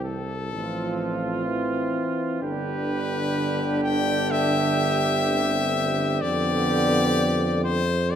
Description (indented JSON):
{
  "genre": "classical, brass quintet",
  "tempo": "63 BPM",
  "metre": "4/4",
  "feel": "straight",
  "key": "unclear",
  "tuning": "A4 = 439 Hz",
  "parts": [
    { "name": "clear trumpet", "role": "melody", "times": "0.0-8.2 s", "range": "A4 to G5", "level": "-26 LUFS", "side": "left 7 dB", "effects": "none" },
    { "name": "warm flugelhorn", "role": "second line", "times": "0.0-8.2 s", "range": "F4 to G4", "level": "-30 LUFS", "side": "right 8 dB", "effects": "none" },
    { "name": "dark trombone", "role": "accompaniment", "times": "0.0-8.2 s", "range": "D3 to F3", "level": "-29 LUFS", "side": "right 3 dB", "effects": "none" },
    { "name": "mellow French horn", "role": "accompaniment", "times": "0.0-8.2 s", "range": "B3 to D4", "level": "-29 LUFS", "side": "left 2 dB", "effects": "none" },
    { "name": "mellow tuba", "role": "bass", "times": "0.0-8.2 s", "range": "G1 to F2", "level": "-28 LUFS", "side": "right 2 dB", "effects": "none" }
  ],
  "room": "wet recital hall reverb, RT60 1.7 s",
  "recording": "none",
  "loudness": "-21 LUFS",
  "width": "side -9 dB against mid",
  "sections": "0.0-8.2 A section",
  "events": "none",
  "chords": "0.0 C; 0.5 F/A; 2.4 G; 6.2 G7/F",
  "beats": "0.52 1.47 | 2.42 3.38 4.33 5.28 | 6.23 7.17 8.12"
}